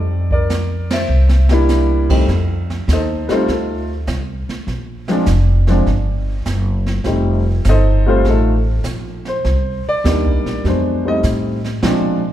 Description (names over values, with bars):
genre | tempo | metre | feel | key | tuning
jazz piano trio | 101 BPM | 4/4 | swing 69% on 8ths | F mixolydian | A4 = 444 Hz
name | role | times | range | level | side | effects
warm grand piano | melody | 0.0-12.2 s | F2 to E5 | -18 LUFS | left 1 dB | none
upright bass | bass | 0.0-12.2 s | F1 to Bb2 | -16 LUFS | equal | none
jazz brush drum kit | drums | 0.3-12.3 s | brushed snare drum, crash cymbal, hi-hat, kick drum, ride cymbal, snare drum | -23 LUFS | right 2 dB | none
room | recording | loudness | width
moderate concert hall reverb, RT60 2.3 s | recorded in a church or concert hall | -14 LUFS | side -12 dB against mid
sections
0.0-2.3 A section; 2.3-12.3 B section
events
band accent 0.8; drum fill 1.1-1.7; grand piano solo 2.3-12.3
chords
0.0 F; 1.1 C7; 2.3 F7; 4.7 Bb5; 7.1 F7; 9.4 Cm7; 10.6 F7; 11.8 Bb7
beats
0.49 1.09 1.69 | 2.28 2.88 3.48 4.07 | 4.67 5.27 5.86 6.46 | 7.06 7.65 8.25 8.85 | 9.44 10.04 10.63 11.23 | 11.83